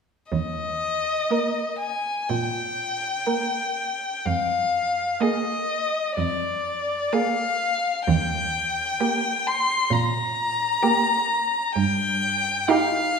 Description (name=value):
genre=classical, slow romantic movement for string quartet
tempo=61-67 BPM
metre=4/4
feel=rubato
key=Eb major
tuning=A4 = 442 Hz
part: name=warm violin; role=melody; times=0.3-13.2 s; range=D5 to C6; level=-23 LUFS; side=left 3 dB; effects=none
part: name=rich cello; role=bass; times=0.3-12.5 s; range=Eb2 to Bb2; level=-26 LUFS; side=right 4 dB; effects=none
part: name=dark violin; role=second line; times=1.3-13.2 s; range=G4 to Bb4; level=-29 LUFS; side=right 2 dB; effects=none
part: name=warm viola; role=accompaniment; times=1.3-13.2 s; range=Bb3 to Eb4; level=-26 LUFS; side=right 5 dB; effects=none
room=wet recital hall reverb, RT60 1.3 s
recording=minimal, uncompressed stereo recording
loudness=-22 LUFS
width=side -5 dB against mid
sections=0.3-13.2 A section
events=none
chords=0.3 Eb; 4.3 Bb7/F; 8.1 Eb; 11.8 Eb/G